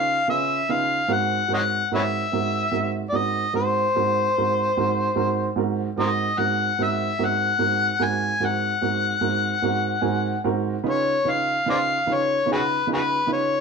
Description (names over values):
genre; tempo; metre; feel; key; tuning
blues; 49 BPM (dotted quarters); 12/8; straight; unclear; A4 = 440 Hz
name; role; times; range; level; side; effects
overdriven harmonica; melody; 0.0-13.6 s; Gb4 to Ab5; -22 LUFS; left 3 dB; none
dark grand piano; accompaniment; 0.0-13.6 s; Ab2 to Ab5; -25 LUFS; right 6 dB; none
room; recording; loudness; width
moderate studio reverb, RT60 0.7 s; band playing live in one room; -20 LUFS; side -5 dB against mid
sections
0.0-13.6 A section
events
grand piano fill 9.6-10.8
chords
0.0 Db7; 1.1 Ab7; 10.8 Db7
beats
| 1.09 2.31 3.53 4.75 | 5.96 7.18 8.40 9.62 | 10.84 12.06 13.28